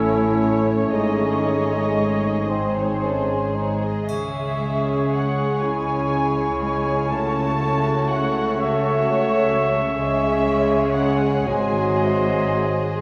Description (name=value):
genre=classical, slow romantic movement for symphony orchestra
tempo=36-43 BPM (dotted quarters)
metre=6/8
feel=rubato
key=C# minor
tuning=A4 = 441 Hz
part: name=muted studio violin section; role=melody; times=0.0-13.0 s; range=A4 to A5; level=-30 LUFS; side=equal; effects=none
part: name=clear clarinet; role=second line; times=0.0-13.0 s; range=C#4 to E5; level=-30 LUFS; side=equal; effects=none
part: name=muted studio violin section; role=second line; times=0.0-13.0 s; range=E4 to C#5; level=-32 LUFS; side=equal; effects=none
part: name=silver concert flute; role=second line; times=0.0-13.0 s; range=B#5 to E6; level=-32 LUFS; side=equal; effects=none
part: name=mellow bassoon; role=accompaniment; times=0.0-13.0 s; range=F#3 to D#4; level=-28 LUFS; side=equal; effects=none
part: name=muted studio viola section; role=accompaniment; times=0.0-13.0 s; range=G#3 to F#4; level=-30 LUFS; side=equal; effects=none
part: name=mellow French horn section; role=sustained chords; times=0.0-13.0 s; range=F#3 to E4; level=-30 LUFS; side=equal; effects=none
part: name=concert harp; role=arpeggios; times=0.0-13.0 s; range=G#2 to G#5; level=-33 LUFS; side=equal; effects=none
part: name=muted studio cello section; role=bass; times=0.0-13.0 s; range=G#2 to C#3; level=-30 LUFS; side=equal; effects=none
part: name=muted studio double bass section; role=bass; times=0.0-13.0 s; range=G#1 to C#2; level=-32 LUFS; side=equal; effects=none
part: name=triangle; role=percussion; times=4.1-6.1 s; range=none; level=-47 LUFS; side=equal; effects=none
room=wet recital hall reverb, RT60 1.5 s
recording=none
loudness=-21 LUFS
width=mono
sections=0.0-13.0 A section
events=none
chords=0.0 A; 0.9 G#sus4; 2.5 G#; 4.1 C#m; 7.1 F#m/C#; 10.0 C#m; 11.5 G#7